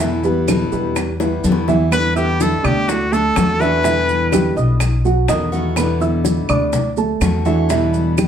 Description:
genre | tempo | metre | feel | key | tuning
latin, Cuban son and guajira | 125 BPM | 4/4 | straight | E minor | A4 = 438 Hz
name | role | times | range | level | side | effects
picked steel-string acoustic guitar | accompaniment | 0.0-8.3 s | B2 to F#4 | -23 LUFS | left 3 dB | none
dark baby grand piano | arpeggios | 0.0-8.3 s | E3 to E6 | -20 LUFS | right 4 dB | none
upright bass | bass | 0.0-8.3 s | B1 to E2 | -20 LUFS | equal | none
bongos | percussion | 0.0-8.3 s | none | -26 LUFS | left 4 dB | none
congas | percussion | 0.0-8.3 s | none | -23 LUFS | left 1 dB | none
maracas | percussion | 0.0-8.3 s | none | -32 LUFS | right 7 dB | none
claves | percussion | 0.5-8.3 s | none | -28 LUFS | right 6 dB | none
clear trumpet | melody | 1.9-4.6 s | F#4 to B4 | -18 LUFS | left 2 dB | plate reverb
nylon-string guitar | second line | 1.9-4.6 s | A3 to D4 | -29 LUFS | right 8 dB | none
room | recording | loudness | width
wet studio reverb, RT60 0.8 s | heard from further back in the room | -14 LUFS | side -8 dB against mid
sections
0.0-1.9 A section; 1.9-8.3 B section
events
drum fill 1.2-1.9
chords
0.0 Em7; 2.9 D; 3.8 Em7; 4.8 B7; 5.8 Em7; 6.7 D; 7.7 Em7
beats
| 0.00 0.48 0.96 1.44 | 1.92 2.40 2.88 3.36 | 3.84 4.32 4.80 5.29 | 5.77 6.25 6.73 7.21 | 7.69 8.18

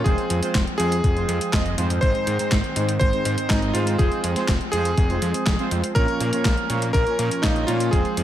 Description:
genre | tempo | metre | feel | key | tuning
italo disco | 122 BPM | 4/4 | straight | F minor | A4 = 440 Hz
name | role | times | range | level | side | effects
bright electric grand piano | melody | 0.0-8.2 s | Eb4 to C5 | -25 LUFS | equal | ping-pong delay
warm analog pad | sustained chords | 0.0-8.2 s | Eb3 to Db4 | -31 LUFS | right 1 dB | chorus, vintage 12-bit sampler grit
analog synth brass | stabs | 0.0-8.2 s | Ab2 to Eb5 | -28 LUFS | right 3 dB | chorus
fat analog bass | bass | 0.0-8.2 s | F1 to Bb2 | -25 LUFS | equal | tube saturation
clean 12-bit digital drum machine | drums | 0.1-8.2 s | handclaps, hi-hat, snare drum | -27 LUFS | equal | overdrive, small room ambience, gated reverb
electronic kick drum | drums | 0.1-8.0 s | none | -22 LUFS | equal | overdrive, small room ambience
room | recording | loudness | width
digital ambience | none | -19 LUFS | side -12 dB against mid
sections
0.0-8.2 A section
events
none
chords
0.1 Fm; 2.0 Ab; 4.0 Fm; 6.0 Bbm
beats
| 0.06 0.55 1.04 1.53 | 2.02 2.52 3.01 3.50 | 3.99 4.48 4.98 5.47 | 5.96 6.45 6.94 7.43 | 7.93

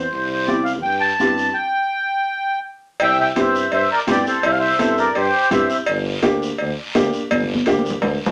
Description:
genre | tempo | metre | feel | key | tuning
latin, cumbia | 167 BPM | 4/4 | straight | unclear | A4 = 441 Hz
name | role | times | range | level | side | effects
accordion | melody | 0.0-5.8 s | G4 to A5 | -20 LUFS | equal | light tremolo tuning
warm tuba | bass | 0.0-8.2 s | G1 to G2 | -28 LUFS | equal | none
congas | percussion | 0.1-8.3 s | none | -29 LUFS | equal | none
guiro | percussion | 0.1-8.3 s | none | -34 LUFS | equal | none
warm upright piano | accompaniment | 0.5-7.9 s | Bb3 to A4 | -23 LUFS | equal | none
cowbell and timbales | percussion | 3.0-8.3 s | none | -26 LUFS | equal | none
room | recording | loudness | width
wet studio reverb, RT60 0.6 s | none | -19 LUFS | mono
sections
0.0-3.0 A section; 3.0-8.3 B section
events
stop 1.6-3.0; drum fill 7.3-8.3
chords
0.1 C; 1.6 N.C.; 3.0 C; 5.9 Gm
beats
| 0.12 0.48 0.84 1.20 | 1.56 1.92 2.28 2.64 | 3.00 3.36 3.72 4.08 | 4.44 4.80 5.16 5.52 | 5.88 6.23 6.59 6.95 | 7.31 7.67 8.03

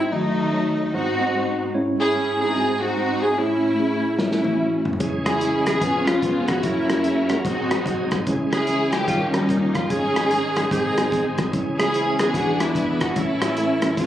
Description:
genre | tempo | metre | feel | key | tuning
uptempo gospel | 147 BPM | 4/4 | swing 63% on 8ths | C# harmonic minor | A4 = 438 Hz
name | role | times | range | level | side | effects
breathy alto saxophone | melody | 0.0-14.1 s | D#4 to G#4 | -25 LUFS | right 3 dB | none
dark studio string section | melody | 0.0-14.1 s | F#3 to G#4 | -23 LUFS | left 2 dB | none
mellow tine electric piano | accompaniment | 0.0-14.1 s | A1 to E5 | -26 LUFS | left 1 dB | medium stereo tremolo
modern studio drum kit | drums | 4.2-14.1 s | hi-hat, kick drum, rim click, snare drum, toms | -26 LUFS | equal | none
bright tonewheel organ | sustained chords | 5.0-14.1 s | D#3 to A#4 | -27 LUFS | right 2 dB | slow rotary speaker, chorus vibrato
room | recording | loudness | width
light reverb, small room reverb | recorded on a phone in the room, club reverb, compression | -19 LUFS | side -12 dB against mid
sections
0.0-14.1 A section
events
drum fill 4.2-5.0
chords
0.1 D#dim; 0.9 G#7; 1.7 C#m/G#; 2.6 G#7; 3.4 A; 5.0 C#m; 5.8 C#7/E#; 6.6 F#; 7.5 G#7; 8.3 C#m; 9.1 D#9; 9.9 G#sus4; 10.7 G#; 11.5 C#m; 12.3 E7; 13.2 A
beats
| 0.12 0.53 0.93 1.34 | 1.75 2.15 2.56 2.97 | 3.38 3.78 4.19 4.60 | 5.01 5.41 5.82 6.23 | 6.64 7.04 7.45 7.86 | 8.27 8.68 9.08 9.49 | 9.90 10.31 10.71 11.12 | 11.53 11.94 12.35 12.76 | 13.16 13.57 13.98

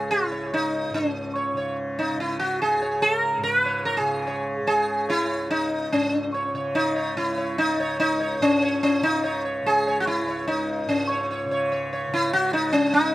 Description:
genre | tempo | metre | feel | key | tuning
indian classical | 145 BPM | 3/4 | straight | unclear | A4 = 440 Hz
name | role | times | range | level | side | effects
sitar | melody | 0.0-13.1 s | C#4 to C#5 | -22 LUFS | equal | none
tanpura | drone | 0.0-13.1 s | C#2 to C#3 | -32 LUFS | right 1 dB | none
room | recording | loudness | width
little or no reverb | recorded outdoors, with no room sound | -21 LUFS | side -16 dB against mid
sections
0.0-5.9 A section; 5.9-13.1 B section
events
none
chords
none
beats
0.11 0.53 | 0.94 1.36 1.77 | 2.19 2.61 3.02 | 3.44 3.85 4.27 | 4.68 5.10 5.51 | 5.92 6.34 6.75 | 7.17 7.58 8.00 | 8.41 8.82 9.23 | 9.65 10.06 10.47 | 10.89 11.30 11.71 | 12.12 12.54 12.95

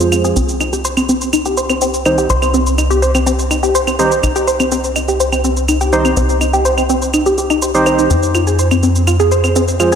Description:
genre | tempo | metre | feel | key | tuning
melodic techno | 124 BPM | 4/4 | straight | C minor | A4 = 440 Hz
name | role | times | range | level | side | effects
sync-sweep polysynth | stabs | 0.0-9.9 s | Eb4 to C5 | -17 LUFS | right 2 dB | chorus, cassette tape, ping-pong delay
tight sequencer bass | bass | 0.0-10.0 s | C2 to F2 | -18 LUFS | equal | tube saturation
shaker and claves | drums | 0.0-10.0 s | none | -21 LUFS | right 3 dB | none
tight sequenced synth | arpeggios | 0.1-10.0 s | C4 to C5 | -15 LUFS | left 1 dB | chorus, phaser, ping-pong delay
room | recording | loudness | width
wet lush hall reverb, RT60 2.6 s | dreamy mix soaked in reverb | -12 LUFS | side -7 dB against mid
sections
0.0-10.0 A section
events
filter sweep on analog polysynth 0.0-10.0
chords
0.4 Cm; 8.1 Fm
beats
| 0.36 0.85 1.33 1.81 | 2.30 2.78 3.27 3.75 | 4.23 4.72 5.20 5.68 | 6.17 6.65 7.14 7.62 | 8.10 8.59 9.07 9.56

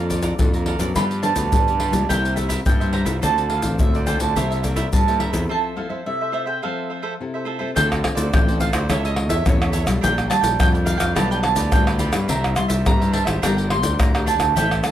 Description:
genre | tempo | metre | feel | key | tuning
samba and choro | 106 BPM | 4/4 | straight | F major, D minor from 7.8 s | A4 = 440 Hz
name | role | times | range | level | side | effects
mandolin | melody | 0.0-14.9 s | C5 to C6 | -24 LUFS | right 4 dB | plate reverb
cavaquinho | accompaniment | 0.0-14.9 s | D4 to Bb5 | -29 LUFS | right 4 dB | none
nylon-string guitar | accompaniment | 0.0-14.9 s | G2 to Bb4 | -27 LUFS | left 3 dB | none
fuzz fingered electric bass | bass | 0.0-14.8 s | G1 to G2 | -23 LUFS | equal | overdrive
egg shaker, surdo, pandeiro and tamborim | percussion | 0.1-14.9 s | none | -21 LUFS | left 1 dB | none
room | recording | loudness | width
moderate studio reverb, RT60 0.6 s | none | -17 LUFS | side -11 dB against mid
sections
0.0-7.8 A section; 7.8-14.9 B section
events
break 5.5-7.8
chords
0.0 Bbmaj7/F; 1.0 G7; 2.1 C7; 3.2 Dm7; 4.4 C6; 5.5 Fmaj7; 7.8 Dm7; 8.9 A/C#; 10.0 Bb6; 11.2 G7/B; 12.3 Cadd9; 13.4 Gm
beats
0.39 | 0.96 1.53 2.09 2.66 | 3.23 3.80 4.36 4.93 | 5.50 6.06 6.63 7.20 | 7.76 8.33 8.90 9.46 | 10.03 10.60 11.16 11.73 | 12.30 12.86 13.43 14.00 | 14.56

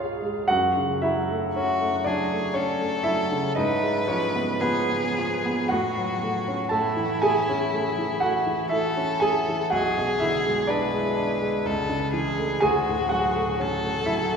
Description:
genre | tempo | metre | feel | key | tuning
classical, romantic duo for violin and grand piano | 54-63 BPM | 3/4 | rubato | F# minor | A4 = 440 Hz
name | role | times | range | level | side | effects
clear baby grand piano | accompaniment | 0.0-14.4 s | B1 to A5 | -23 LUFS | right 1 dB | none
rich violin | melody | 1.5-14.4 s | E4 to B4 | -27 LUFS | left 2 dB | none
room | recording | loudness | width
wet cathedral reverb, RT60 7.4 s | recorded in a church or concert hall | -22 LUFS | side -6 dB against mid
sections
0.5-14.4 A section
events
none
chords
0.0 C#; 0.5 F#m; 3.6 Fdim/Ab; 5.7 F#m/A; 6.7 A; 9.7 G#dim/B; 11.7 A/C#; 12.6 Dmaj7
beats
| 0.50 1.55 2.56 | 3.57 4.61 5.69 | 6.71 7.73 8.72 | 9.72 10.70 11.65 | 12.62 13.60

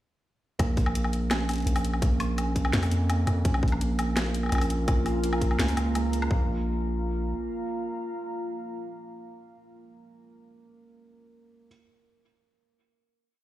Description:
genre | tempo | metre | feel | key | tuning
half-time drum and bass | 168 BPM | 4/4 | half-time | Bb minor | A4 = 438 Hz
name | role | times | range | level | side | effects
felt-muted upright piano | arpeggios | 0.6-6.5 s | Ab3 to Db4 | -33 LUFS | right 3 dB | vintage 12-bit sampler grit, dub echo
long sustained 808-style bass | bass | 0.6-7.3 s | Bb1 to F2 | -27 LUFS | equal | none
drum and bass drum kit | drums | 0.6-6.3 s | hi-hat, snare drum, woodblock | -31 LUFS | left 1 dB | overdrive
electronic kick drum | drums | 0.6-6.4 s | none | -25 LUFS | equal | overdrive
deep dark ambient pad | sustained chords | 4.1-9.5 s | Bb3 to Bb5 | -33 LUFS | equal | chorus, built-in reverb, sidechain pumping
room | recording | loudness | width
light reverb, digital ambience | played on a big sound system in a bare room, large studio reverb | -24 LUFS | side -14 dB against mid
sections
0.6-6.3 drop; 6.3-9.2 final chord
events
drop 0.6-6.3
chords
0.6 Bb5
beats
| 0.59 0.95 1.30 1.66 | 2.02 2.38 2.73 3.09 | 3.45 3.81 4.16 4.52 | 4.88 5.23 5.59 5.95 | 6.30 6.66 7.02 7.38 | 7.73 8.09 8.45 8.80

